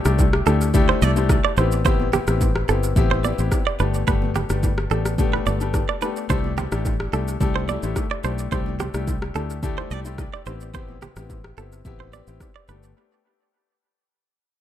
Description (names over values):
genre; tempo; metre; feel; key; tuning
afrobeats; 108 BPM; 4/4; straight; C major; A4 = 438 Hz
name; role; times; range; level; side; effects
clear baby grand piano; accompaniment; 0.0-12.9 s; A3 to G4; -26 LUFS; left 7 dB; dub echo
fingered electric bass; bass; 0.1-12.9 s; G1 to D2; -23 LUFS; equal; none
afro-pop drum kit; drums; 0.1-13.0 s; kick drum, rim click, shaker; -24 LUFS; equal; dub echo
bongos and congas; percussion; 0.2-12.8 s; none; -33 LUFS; right 3 dB; none
direct-recorded clean electric guitar; riff; 0.5-12.8 s; G4 to D5; -26 LUFS; right 9 dB; vibrato effect, dub echo
room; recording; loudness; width
little or no reverb; echo-heavy mix; -19 LUFS; side -11 dB against mid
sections
0.0-14.6 A section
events
fade-out 0.2-14.6; break 13.0-14.6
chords
0.0 C6; 1.6 Am7; 3.8 Gadd9; 6.3 C6; 10.5 Am7; 12.7 Gadd9